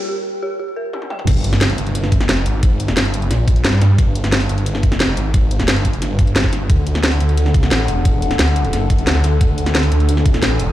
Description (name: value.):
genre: dark technical drum and bass.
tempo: 177 BPM.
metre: 4/4.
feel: straight.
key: unclear.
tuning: A4 = 440 Hz.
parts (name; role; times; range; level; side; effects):
dark detuned synth bell; arpeggios; 0.1-1.3 s; G4 to G5; -25 LUFS; equal; chorus, sidechain pumping, ping-pong delay.
drum and bass drum kit; drums; 0.9-10.7 s; crash cymbal, hi-hat, snare drum, toms; -20 LUFS; equal; none.
snarling distorted saw bass; bass; 1.3-10.7 s; E1 to G2; -16 LUFS; equal; distortion, overdrive, high-pass filter.
electronic kick drum; drums; 1.3-10.3 s; none; -16 LUFS; equal; high-pass filter on kick, high-pass filter on room.
impact; sound effects; 1.3-2.6 s; none; -27 LUFS; right 1 dB; none.
warbly tape-like pad; texture; 6.9-10.7 s; D4 to Ab5; -24 LUFS; left 1 dB; chorus, built-in reverb, sidechain pumping.
room: digital ambience.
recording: played on a big sound system in a bare room, large studio reverb, high-pass filter.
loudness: -14 LUFS.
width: side -14 dB against mid.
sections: 0.0-1.3 A section; 1.3-10.7 B section.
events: break 0.0-1.3; build-up 0.0-1.3; filter sweep 0.0-1.3; drum fill 0.9-1.3; drop 1.3-10.7; impact 1.3-2.6.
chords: 0.0 Gm; 6.7 D.